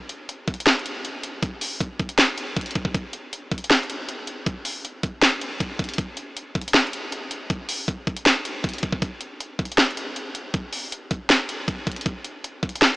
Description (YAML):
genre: hip hop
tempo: 158 BPM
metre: 4/4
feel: half-time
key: none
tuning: none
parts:
  - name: trap drum kit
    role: drums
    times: 0.1-12.9 s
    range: handclaps, hi-hat, kick drum, snare drum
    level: -21 LUFS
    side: equal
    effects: none
room: moderate huge ambient reverb, RT60 5.2 s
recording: blown-out, overdriven recording, overdrive, small speaker sound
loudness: -22 LUFS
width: side -23 dB against mid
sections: 0.0-13.0 A section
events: none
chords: none